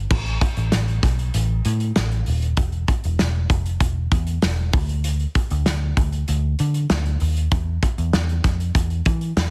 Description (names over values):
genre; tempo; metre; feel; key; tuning
piano-driven pop; 97 BPM; 4/4; straight; unclear; A4 = 440 Hz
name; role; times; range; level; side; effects
vintage muted picked electric bass; bass; 0.0-9.5 s; D#1 to E3; -23 LUFS; equal; none
loose indie drum kit; drums; 0.1-9.5 s; crash cymbal, hi-hat, kick drum, snare drum; -24 LUFS; equal; none
room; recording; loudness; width
little or no reverb; heavily compressed radio sound, multiband compression; -21 LUFS; mono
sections
0.1-9.5 A section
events
none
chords
none